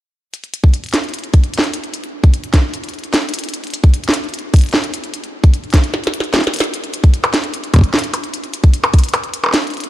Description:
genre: IDM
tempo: 150 BPM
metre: 4/4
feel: straight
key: none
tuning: none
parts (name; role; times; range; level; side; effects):
- glitchy drum kit; drums; 0.3-9.9 s; hi-hat, percussion blips, snare drum; -18 LUFS; equal; studio reverb, digital delay
- electronic kick drum; drums; 0.6-9.0 s; none; -8 LUFS; equal; studio reverb
room: little or no reverb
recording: dark, warm production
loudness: -13 LUFS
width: side -14 dB against mid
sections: 0.3-6.7 A section; 6.7-9.9 B section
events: drum fill 5.9-6.7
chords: none

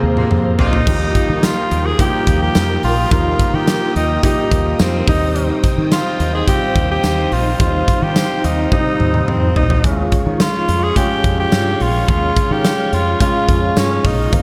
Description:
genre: 1980s-style pop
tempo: 107 BPM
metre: 4/4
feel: straight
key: Eb mixolydian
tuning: A4 = 440 Hz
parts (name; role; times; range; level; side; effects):
- raspy tenor saxophone; melody; 0.0-14.4 s; F3 to Ab4; -22 LUFS; equal; diffuse ambient delay
- warm concert grand piano; accompaniment; 0.0-14.4 s; F3 to Bb4; -23 LUFS; equal; none
- string machine, cellos; sustained chords; 0.0-14.4 s; Eb4 to Eb6; -28 LUFS; equal; phaser, ensemble chorus
- fretless electric bass; bass; 0.0-14.4 s; Bb1 to Eb3; -22 LUFS; equal; lush chorus
- warm horn section; stabs; 0.2-0.8 s; C3 to F4; -29 LUFS; equal; none
- big rock drum kit; drums; 0.2-14.4 s; crash cymbal, hi-hat, kick drum, snare drum, tambourine, toms; -20 LUFS; equal; none
room: moderate lush hall reverb, RT60 1.7 s, small room ambience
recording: dreamy mix soaked in reverb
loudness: -16 LUFS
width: mono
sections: 0.9-14.4 A section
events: drum fill 0.0-0.9, 8.7-9.8; band accent 0.0-0.9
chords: 0.0 Bbsus2; 0.9 Ebadd9; 5.1 Cm; 9.8 Db

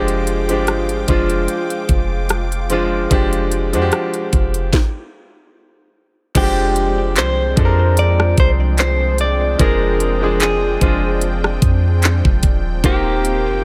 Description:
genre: contemporary R&B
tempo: 74 BPM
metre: 4/4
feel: swing 54% on 16ths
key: F dorian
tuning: A4 = 440 Hz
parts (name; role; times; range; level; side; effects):
- bright grand piano; accompaniment; 0.0-13.6 s; Eb3 to Bb4; -23 LUFS; equal; none
- lush unison pad; sustained chords; 0.0-13.6 s; Eb3 to D6; -28 LUFS; equal; chorus
- clean 808-style bass; bass; 0.0-13.6 s; Eb1 to F2; -21 LUFS; equal; none
- trap drum kit; drums; 0.1-13.4 s; crash cymbal, handclaps, hi-hat, kick drum, rim click, snare drum; -19 LUFS; equal; none
- direct-recorded clean electric guitar; melody; 6.4-13.6 s; G4 to D5; -22 LUFS; equal; spring reverb, digital delay
room: little or no reverb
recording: none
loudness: -16 LUFS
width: mono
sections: 0.0-6.3 A section; 6.3-13.6 B section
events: stop 4.7-6.3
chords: 0.0 Fm69; 12.8 Eb6

